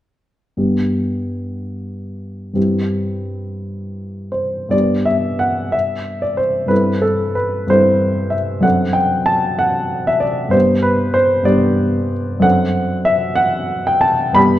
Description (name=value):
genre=classical, romantic character piece for solo piano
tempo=50-65 BPM (dotted quarters)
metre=6/8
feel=rubato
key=G major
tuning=A4 = 439 Hz
part: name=warm baby grand piano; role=solo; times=0.6-14.6 s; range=F#2 to B5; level=-15 LUFS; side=equal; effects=none
room=wet recital hall reverb, RT60 1.3 s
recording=dark, warm production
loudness=-14 LUFS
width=side -13 dB against mid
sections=0.6-4.7 A section; 4.7-14.6 B section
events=none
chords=0.6 G; 2.6 C/G; 4.7 G; 6.7 Am7/G; 8.6 D7/F#; 10.5 G; 12.4 D7/F#